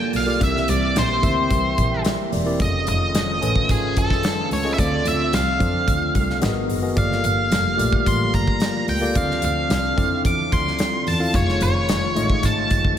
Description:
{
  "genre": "polished 1980s jazz-funk pop",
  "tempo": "110 BPM",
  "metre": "4/4",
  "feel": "straight",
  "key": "F major",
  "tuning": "A4 = 440 Hz",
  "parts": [
    { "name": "octave-fuzz lead guitar", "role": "melody", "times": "0.0-13.0 s", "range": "G#4 to D6", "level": "-23 LUFS", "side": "equal", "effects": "distortion, slapback echo" },
    { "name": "tine electric piano", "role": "accompaniment", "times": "0.0-13.0 s", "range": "G#3 to C6", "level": "-25 LUFS", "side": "left 1 dB", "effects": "wide subtle chorus" },
    { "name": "chorused pulse-width pad", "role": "sustained chords", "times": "0.0-13.0 s", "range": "D3 to A4", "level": "-30 LUFS", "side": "equal", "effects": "none" },
    { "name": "dark double bass", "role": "bass", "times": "0.1-12.9 s", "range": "E1 to F2", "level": "-24 LUFS", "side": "equal", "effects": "none" },
    { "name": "modern studio drum kit", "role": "drums", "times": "0.1-13.0 s", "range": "hi-hat, kick drum, snare drum", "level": "-24 LUFS", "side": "equal", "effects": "none" }
  ],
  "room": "moderate lush hall reverb, RT60 2.6 s",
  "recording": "big arena sound",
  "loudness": "-18 LUFS",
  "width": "side -10 dB against mid",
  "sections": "0.0-13.0 A section",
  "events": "tine electric piano fill 1.5-2.6",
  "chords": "0.4 C7; 2.6 F7alt; 4.8 Dm7; 6.4 Abm9; 7.0 Gm9; 9.2 Dm9; 11.3 F7alt"
}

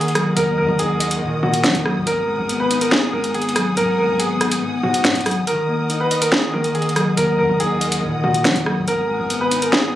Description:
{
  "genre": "hip hop, drill",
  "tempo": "141 BPM",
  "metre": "4/4",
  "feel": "half-time",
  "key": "Eb minor",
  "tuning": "A4 = 440 Hz",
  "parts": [
    { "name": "bright concert grand piano", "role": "melody", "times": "0.0-9.9 s", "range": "Gb4 to Cb5", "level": "-21 LUFS", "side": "equal", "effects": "low-pass filter, digital delay" },
    { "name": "mellow electric guitar", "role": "accompaniment", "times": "0.0-10.0 s", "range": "Ab2 to Eb5", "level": "-23 LUFS", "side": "left 2 dB", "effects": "low-pass filter" },
    { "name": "dark studio string section", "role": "sustained chords", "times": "0.0-10.0 s", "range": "Cb4 to Eb6", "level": "-27 LUFS", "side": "left 2 dB", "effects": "none" },
    { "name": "hard-hitting 808-style bass", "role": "bass", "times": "0.0-9.9 s", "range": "Gb1 to Gb3", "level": "-27 LUFS", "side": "right 1 dB", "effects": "none" },
    { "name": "drill drum kit", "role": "drums", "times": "0.0-9.8 s", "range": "finger snaps, hi-hat, rim click, snare drum", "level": "-20 LUFS", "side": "equal", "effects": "none" }
  ],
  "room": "light reverb, small room ambience",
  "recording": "recorded on a phone in the room, club reverb",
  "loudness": "-16 LUFS",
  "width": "side -13 dB against mid",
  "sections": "0.0-10.0 A section",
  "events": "kick muted 5.5-6.3",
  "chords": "0.0 Ebm; 2.1 Abm7; 5.5 Ebm; 8.9 Abm7"
}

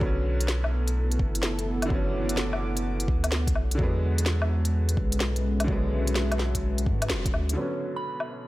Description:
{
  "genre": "future garage",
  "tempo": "127 BPM",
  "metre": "4/4",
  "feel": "swing 66% on 16ths",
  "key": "B dorian",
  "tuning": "A4 = 440 Hz",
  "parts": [
    { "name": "bright upright piano", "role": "accompaniment", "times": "0.0-8.5 s", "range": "D3 to C#4", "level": "-33 LUFS", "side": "right 1 dB", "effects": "vintage 12-bit sampler grit, sidechain pumping, low-pass filter, tape echo" },
    { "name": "dark analog pad", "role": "sustained chords", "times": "0.0-8.5 s", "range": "G#3 to D6", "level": "-33 LUFS", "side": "equal", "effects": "chorus, sidechain pumping" },
    { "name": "warm sub bass", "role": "bass", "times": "0.0-7.6 s", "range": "E1 to G#2", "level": "-27 LUFS", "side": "equal", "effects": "sidechain pumping" },
    { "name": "electronic kick drum", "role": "drums", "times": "0.0-7.3 s", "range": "none", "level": "-28 LUFS", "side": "equal", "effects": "studio ambience" },
    { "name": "organic electronic drum kit", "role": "drums", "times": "0.4-8.3 s", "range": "hi-hat, snare drum, woodblock", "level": "-30 LUFS", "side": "left 1 dB", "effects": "studio ambience" },
    { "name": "soft synth bell", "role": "melody", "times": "8.0-8.4 s", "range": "B5", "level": "-34 LUFS", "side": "right 3 dB", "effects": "chorus, phaser" }
  ],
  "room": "digital ambience",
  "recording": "none",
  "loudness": "-24 LUFS",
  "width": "side -17 dB against mid",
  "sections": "0.0-7.6 A section",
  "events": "band accent 7.1",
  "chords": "0.0 Bmadd9; 3.8 E7; 7.6 Bmadd9"
}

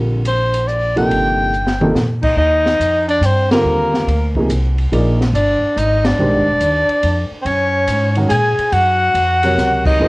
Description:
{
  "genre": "modal jazz",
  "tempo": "142 BPM",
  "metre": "3/4",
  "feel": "swing 66% on 8ths",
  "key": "unclear",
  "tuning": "A4 = 440 Hz",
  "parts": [
    { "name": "warm baby grand piano", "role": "accompaniment", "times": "0.0-10.1 s", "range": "C3 to D5", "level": "-18 LUFS", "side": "right 1 dB", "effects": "cassette tape" },
    { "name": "upright bass", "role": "bass", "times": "0.0-10.1 s", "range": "Eb1 to Bb2", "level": "-18 LUFS", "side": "equal", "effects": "none" },
    { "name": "warm soprano saxophone", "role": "melody", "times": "0.3-10.1 s", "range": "Bb4 to Ab5", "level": "-16 LUFS", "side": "left 1 dB", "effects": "cassette tape, plate reverb" },
    { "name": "open jazz drum kit", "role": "drums", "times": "0.3-9.9 s", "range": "crash cymbal, hi-hat, kick drum, ride cymbal, snare drum, toms", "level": "-23 LUFS", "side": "equal", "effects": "cassette tape" },
    { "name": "breathy alto saxophone", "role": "second line", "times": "2.2-10.1 s", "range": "Bb3 to Ab4", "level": "-20 LUFS", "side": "equal", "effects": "cassette tape, plate reverb" }
  ],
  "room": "moderate small room ambience, RT60 0.5 s",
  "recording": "home recording on cassette",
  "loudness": "-13 LUFS",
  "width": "side -23 dB against mid",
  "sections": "0.0-2.4 A section; 2.4-10.1 B section",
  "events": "drum fill 1.5-2.0; band accent 3.4, 6.0, 9.8",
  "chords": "0.0 Ebadd9; 2.4 Ebmaj9; 7.5 Gbmaj9"
}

